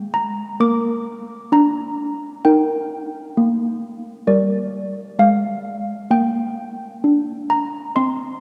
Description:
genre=classical, tune for handbells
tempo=65 BPM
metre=4/4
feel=straight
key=unclear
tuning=A4 = 438 Hz
part: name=malleted handbells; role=solo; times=0.0-8.4 s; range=G3 to D6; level=-20 LUFS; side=equal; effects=none
room=wet church reverb, RT60 3.5 s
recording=none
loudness=-20 LUFS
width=mono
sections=0.0-8.4 A section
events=none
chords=0.0 Eb (rootless); 0.6 Bb; 2.4 Eb; 4.3 Gm

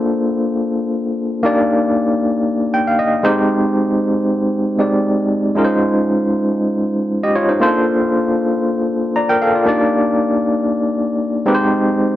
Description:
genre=disco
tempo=117 BPM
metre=4/4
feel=straight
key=Bb major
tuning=A4 = 436 Hz
part: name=overdriven tine electric piano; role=solo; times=0.0-12.2 s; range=Ab3 to Bb5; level=-14 LUFS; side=equal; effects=fast tremolo
room=digital ambience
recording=dry, close 1970s-style studio recording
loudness=-14 LUFS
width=side -13 dB against mid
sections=0.0-12.2 A section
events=tine electric piano fill 2.5-3.5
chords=0.0 Bbmaj9; 1.4 Ebmaj7; 3.2 Abmaj7; 5.6 Dbmaj9; 7.6 Bbmaj9; 9.7 Ebmaj7; 11.5 Abmaj7

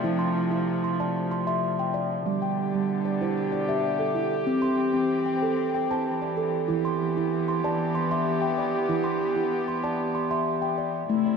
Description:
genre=world meditative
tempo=190 BPM (eighths)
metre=7/8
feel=straight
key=unclear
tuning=A4 = 440 Hz
part: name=warm chamber string section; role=sustained chords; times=0.0-11.4 s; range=B2 to G4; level=-28 LUFS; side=equal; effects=none
part: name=steel tongue drum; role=arpeggios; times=0.0-11.4 s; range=E3 to C6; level=-25 LUFS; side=right 1 dB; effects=tape echo
room=wet echo chamber reverb, RT60 1.9 s, small room ambience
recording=dark, warm production, nothing above 11.0 kHz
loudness=-24 LUFS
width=side -5 dB against mid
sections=0.0-11.1 A section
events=none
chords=0.0 F; 2.3 G; 4.5 C; 6.7 Em

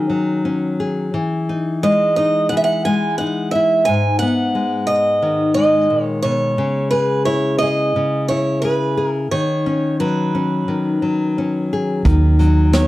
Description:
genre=acoustic folk-pop ballad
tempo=88 BPM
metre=4/4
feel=straight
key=B major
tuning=A4 = 436 Hz
part: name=picked acoustic archtop guitar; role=melody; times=0.0-12.9 s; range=G#4 to G#5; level=-18 LUFS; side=right 2 dB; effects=slapback echo
part: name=nylon-string guitar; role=accompaniment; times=0.0-12.9 s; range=G#2 to G#4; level=-18 LUFS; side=left 2 dB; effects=none
part: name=vintage muted fingered electric bass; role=bass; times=12.0-12.9 s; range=D#2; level=-12 LUFS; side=right 1 dB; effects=none
part: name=vintage brush drum kit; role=drums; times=12.1-12.9 s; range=hi-hat, kick drum, rim click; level=-19 LUFS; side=right 1 dB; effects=none
room=little or no reverb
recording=none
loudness=-15 LUFS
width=side -16 dB against mid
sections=0.0-12.1 A section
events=none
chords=0.0 B69/D# (rootless); 1.1 Emaj7; 3.9 G#m9; 6.6 C#m9; 9.3 Badd9/D#; 12.1 D#m

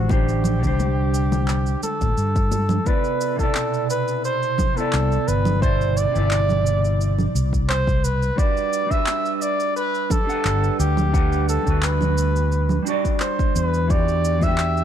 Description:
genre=sunset chillout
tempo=87 BPM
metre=4/4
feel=straight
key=unclear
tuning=A4 = 440 Hz
part: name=trumpet with bucket mute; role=melody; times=0.0-14.8 s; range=F#4 to E5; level=-24 LUFS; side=right 1 dB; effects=ping-pong delay
part: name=mellow electric guitar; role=accompaniment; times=0.0-14.8 s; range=B2 to F#5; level=-25 LUFS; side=moving between left 2 dB and right 5 dB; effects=auto-pan
part: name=mellow fretless electric bass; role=bass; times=0.0-14.8 s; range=G1 to G2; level=-21 LUFS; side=equal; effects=tube saturation, analog chorus
part: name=electronic kick drum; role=drums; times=0.1-14.6 s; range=none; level=-22 LUFS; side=equal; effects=overdrive
part: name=electronic shaker, congas and handclaps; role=drums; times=0.1-14.8 s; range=none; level=-28 LUFS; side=right 2 dB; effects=overdrive
part: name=congas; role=percussion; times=0.1-2.8, 14.4-14.6 s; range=none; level=-30 LUFS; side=left 4 dB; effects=none
room=light reverb, digital ambience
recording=dark, warm production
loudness=-18 LUFS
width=side -9 dB against mid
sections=0.0-2.9 A section; 2.9-14.8 B section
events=none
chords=0.0 D7sus4; 2.9 Cmaj9; 8.4 Gmaj7; 13.9 Em9

